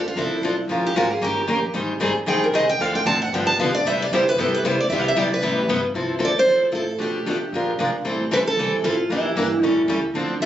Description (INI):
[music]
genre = acoustic string swing (jazz manouche)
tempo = 228 BPM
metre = 4/4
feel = swing 57% on 8ths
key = unclear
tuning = A4 = 441 Hz
[part]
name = picked steel-string acoustic guitar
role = melody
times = 0.0-10.5 s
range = E4 to A5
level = -21 LUFS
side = right 1 dB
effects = plate reverb
[part]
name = upright bass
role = bass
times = 0.0-10.5 s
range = G1 to D3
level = -31 LUFS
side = equal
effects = none
[part]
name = picked steel-string acoustic guitar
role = accompaniment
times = 0.2-10.5 s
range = B2 to Bb4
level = -22 LUFS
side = left 1 dB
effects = none
[part]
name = breathy clarinet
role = second line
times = 10.1-10.5 s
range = D4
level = -28 LUFS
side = right 4 dB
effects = none
[sound]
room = moderate studio reverb, RT60 0.5 s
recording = recorded on a phone in the room, club reverb, compression, nothing above 7.7 kHz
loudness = -18 LUFS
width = side -11 dB against mid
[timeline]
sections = 0.0-6.0 A section; 6.0-10.5 B section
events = steel-string acoustic guitar solo 0.0-6.0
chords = 0.0 F6; 0.7 Bbm7; 1.2 Eb7; 1.7 Abmaj7; 2.8 Dm7; 3.3 G7; 3.9 Cmaj9; 6.0 Fmaj7; 7.0 Bm7b5; 7.5 Bb9; 8.1 Am7; 9.1 Em7b5; 9.6 A7